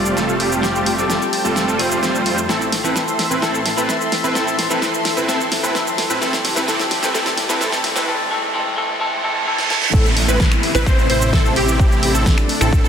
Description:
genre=EDM, festival progressive house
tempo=129 BPM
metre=4/4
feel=straight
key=A minor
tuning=A4 = 441 Hz
part: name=clean electric guitar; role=accompaniment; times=0.0-9.9 s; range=E3 to C5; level=-23 LUFS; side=left 2 dB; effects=sidechain pumping, digital delay
part: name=lush unison pad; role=sustained chords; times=0.0-12.9 s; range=C3 to C6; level=-26 LUFS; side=equal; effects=chorus, phaser, sidechain pumping
part: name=supersaw chords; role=riff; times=0.0-12.9 s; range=G3 to D5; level=-20 LUFS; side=right 1 dB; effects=sidechain pumping, low-pass filter, digital delay
part: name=wide detuned saw bass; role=bass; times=0.0-12.9 s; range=F1 to A2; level=-25 LUFS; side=equal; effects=chorus, sidechain pumping
part: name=riser, reverse cymbal and downlifter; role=sound effects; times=1.3-12.9 s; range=none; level=-27 LUFS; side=right 2 dB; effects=none
part: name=big-room dance drum kit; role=drums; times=0.1-12.9 s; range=cabasa, crash cymbal, finger snaps, hi-hat, snare drum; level=-22 LUFS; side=equal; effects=high-pass filter on snare, high-pass filter on perc, high-pass filter on hats, high-pass filter on cymbals
part: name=plucky unison lead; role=arpeggios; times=9.9-12.9 s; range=G4 to C5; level=-22 LUFS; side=equal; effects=ensemble chorus, sidechain pumping, digital delay
part: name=electronic kick drum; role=drums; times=9.9-12.8 s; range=none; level=-15 LUFS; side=equal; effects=none
room=moderate huge ambient reverb, RT60 5.0 s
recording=dense, heavily limited modern master, high-pass filter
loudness=-15 LUFS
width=side -8 dB against mid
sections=0.0-9.9 A section; 9.9-12.9 B section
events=build-up 0.0-9.9; drum fill 0.0-8.1, 9.6-9.9; filter sweep on supersaw synth 0.0-9.9; filter sweep 0.0-9.9; reverse cymbal 9.0-9.9; drop 9.9-12.9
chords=0.0 Fadd9; 2.5 Am; 6.2 C; 9.9 Am

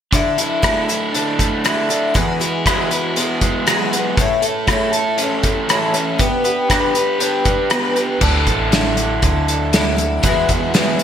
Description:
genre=folk rock and heartland rock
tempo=119 BPM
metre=4/4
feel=straight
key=unclear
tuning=A4 = 440 Hz
part: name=picked twelve-string acoustic guitar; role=accompaniment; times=0.1-11.0 s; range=E2 to B4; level=-20 LUFS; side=left 2 dB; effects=wide subtle chorus
part: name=raw garage guitar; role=riff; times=0.1-11.0 s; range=E2 to B4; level=-20 LUFS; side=right 2 dB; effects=overdrive
part: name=loose indie drum kit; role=drums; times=0.1-11.0 s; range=crash cymbal, hi-hat, kick drum, rim click, snare drum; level=-18 LUFS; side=equal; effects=gated reverb
part: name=upright bass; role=bass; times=8.2-10.7 s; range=A1 to E2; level=-22 LUFS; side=equal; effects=none
room=moderate lush hall reverb, RT60 1.7 s, small room ambience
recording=bright 1980s-style digital production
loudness=-14 LUFS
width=side -9 dB against mid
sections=0.1-8.2 A section; 8.2-11.0 B section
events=none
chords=0.1 Dsus2; 2.2 Eadd9; 4.2 A; 6.2 G/B; 8.2 Dsus2; 10.2 Eadd9

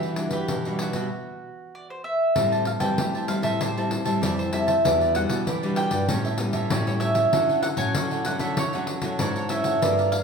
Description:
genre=samba and choro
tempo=96 BPM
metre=4/4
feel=straight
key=unclear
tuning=A4 = 440 Hz
part: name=mandolin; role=melody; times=0.0-10.2 s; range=E4 to G#5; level=-26 LUFS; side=right 1 dB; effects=none
part: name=cavaquinho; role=accompaniment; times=0.0-10.2 s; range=D4 to A5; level=-32 LUFS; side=right 3 dB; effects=none
part: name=nylon-string guitar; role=accompaniment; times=0.0-10.2 s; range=A2 to A4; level=-29 LUFS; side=left 1 dB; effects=none
part: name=nylon-string guitar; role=bass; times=0.0-10.2 s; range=E2 to A3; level=-29 LUFS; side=equal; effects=none
part: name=pandeiro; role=percussion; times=0.0-10.2 s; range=none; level=-29 LUFS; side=left 2 dB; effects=none
room=wet large studio reverb, RT60 1.2 s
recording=band playing live in one room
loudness=-21 LUFS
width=side -5 dB against mid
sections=0.0-2.4 A section; 2.4-10.2 B section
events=none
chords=0.0 Em9; 2.4 Am7; 4.8 Em9; 6.1 A9; 7.3 Dmaj9

